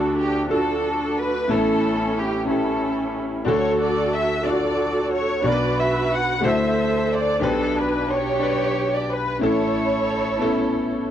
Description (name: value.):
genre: gospel.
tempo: 60 BPM (dotted quarters).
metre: 6/8.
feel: straight.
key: D major.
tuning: A4 = 440 Hz.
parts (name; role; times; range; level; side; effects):
muted chamber string section; melody; 0.0-11.1 s; C#4 to F#5; -22 LUFS; right 1 dB; none.
clear concert grand piano; accompaniment; 0.0-11.1 s; A1 to C5; -23 LUFS; left 2 dB; none.
room: moderate booth ambience, RT60 0.2 s.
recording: dry, close 1970s-style studio recording.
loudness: -19 LUFS.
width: side -10 dB against mid.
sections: 0.0-11.1 A section.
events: none.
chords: 0.0 D; 1.5 A; 3.5 D; 5.4 Bm; 6.4 D9; 7.4 G/B; 9.4 A.